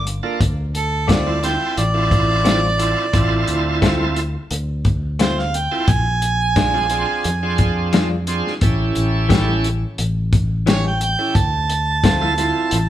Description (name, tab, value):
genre	straight-eighth soul blues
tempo	88 BPM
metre	4/4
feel	straight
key	D minor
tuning	A4 = 440 Hz
part	clear harmonica	second line	0.0-12.9 s	A4 to A5	-21 LUFS	right 3 dB	overdrive
part	fingered electric bass	bass	0.0-12.9 s	G1 to F2	-21 LUFS	left 1 dB	none
part	warm soul drum kit	drums	0.1-12.9 s	hi-hat, kick drum, snare drum	-19 LUFS	left 1 dB	none
part	bright tonewheel organ	accompaniment	0.2-12.8 s	Bb3 to A4	-22 LUFS	right 3 dB	slow rotary speaker, overdrive
part	direct-recorded clean electric guitar	stabs	1.1-12.3 s	E3 to G4	-25 LUFS	left 5 dB	none
room	moderate large studio reverb, RT60 1.3 s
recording	band playing live in one room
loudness	-16 LUFS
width	side -12 dB against mid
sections	0.0-12.9 A section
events	harmonica solo 0.0-12.9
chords	0.4 Dm7; 5.9 Bb7; 8.6 A7; 11.3 Dm7